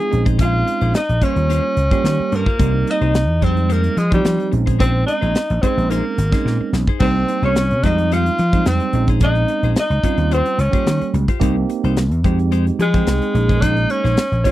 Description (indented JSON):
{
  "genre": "electric jazz fusion",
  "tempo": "109 BPM",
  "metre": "4/4",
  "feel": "straight",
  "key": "Bb dorian",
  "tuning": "A4 = 435 Hz",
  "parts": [
    { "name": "clear tenor saxophone", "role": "melody", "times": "0.0-14.5 s", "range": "G3 to Ab4", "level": "-21 LUFS", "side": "equal", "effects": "none" },
    { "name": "archtop guitar, miked and amplified", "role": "second line", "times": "0.0-14.5 s", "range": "G4 to Ab5", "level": "-28 LUFS", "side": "left 2 dB", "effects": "none" },
    { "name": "barky tine electric piano", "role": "accompaniment", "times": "0.0-14.5 s", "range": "F3 to G5", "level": "-23 LUFS", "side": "right 8 dB", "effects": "none" },
    { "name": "clean electric guitar", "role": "stabs", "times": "0.1-14.5 s", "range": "Ab3 to C5", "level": "-27 LUFS", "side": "left 12 dB", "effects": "wide subtle chorus" },
    { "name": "vintage slap bass", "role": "bass", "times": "0.1-14.5 s", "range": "Ab1 to F3", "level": "-18 LUFS", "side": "equal", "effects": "none" },
    { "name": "modern studio drum kit", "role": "drums", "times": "0.1-14.5 s", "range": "crash cymbal, hi-hat, kick drum, snare drum", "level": "-19 LUFS", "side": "equal", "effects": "none" }
  ],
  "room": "little or no reverb",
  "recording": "dry, close 1970s-style studio recording",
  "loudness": "-15 LUFS",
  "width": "side -14 dB against mid",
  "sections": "0.0-7.0 A section; 7.0-14.5 A section",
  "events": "drum fill 6.5-7.0",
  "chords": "0.1 Bbm11; 1.2 Eb13; 2.6 Cm7; 3.4 Fm9; 4.5 Bbm11; 7.0 Cm7; 7.8 Fm9; 8.9 Bbm11; 10.0 Eb13; 11.4 Cm7; 12.2 Fm9; 13.3 Bbm11"
}